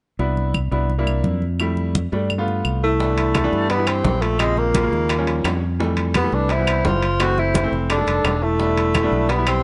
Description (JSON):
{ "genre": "Afro-Cuban jazz", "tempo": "171 BPM", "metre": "4/4", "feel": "straight", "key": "C major", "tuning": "A4 = 439 Hz", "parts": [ { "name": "clear baby grand piano", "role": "accompaniment", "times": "0.2-9.6 s", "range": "Db3 to B4", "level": "-28 LUFS", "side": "equal", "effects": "none" }, { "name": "fingered electric bass", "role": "bass", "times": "0.2-9.6 s", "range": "E1 to G2", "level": "-24 LUFS", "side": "equal", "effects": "none" }, { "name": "congas", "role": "percussion", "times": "0.2-9.6 s", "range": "none", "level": "-29 LUFS", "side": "equal", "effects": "none" }, { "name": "claves", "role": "percussion", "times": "0.5-9.6 s", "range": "none", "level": "-30 LUFS", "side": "equal", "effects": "none" }, { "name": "breathy tenor saxophone", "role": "melody", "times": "2.8-9.6 s", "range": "Ab3 to F#4", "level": "-24 LUFS", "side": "equal", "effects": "none" }, { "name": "mellow hollow jazz flute", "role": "second line", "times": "2.8-9.6 s", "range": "E4 to C5", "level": "-28 LUFS", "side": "equal", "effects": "none" }, { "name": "bongos", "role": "percussion", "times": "3.0-9.5 s", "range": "none", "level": "-35 LUFS", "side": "equal", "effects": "none" }, { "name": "timbales", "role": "percussion", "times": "3.2-9.6 s", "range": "none", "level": "-30 LUFS", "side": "equal", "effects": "none" } ], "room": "light reverb", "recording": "nothing above 10.9 kHz", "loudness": "-20 LUFS", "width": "mono", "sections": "0.2-3.0 A section; 3.0-9.6 B section", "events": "none", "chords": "0.2 Cmaj7; 0.9 C7; 1.6 Fmaj7; 2.3 G7; 3.0 Cmaj9; 4.4 Bbm7; 5.1 Eb9; 5.8 Fmaj9; 7.2 F#m7b5; 7.9 F13; 8.6 Em7" }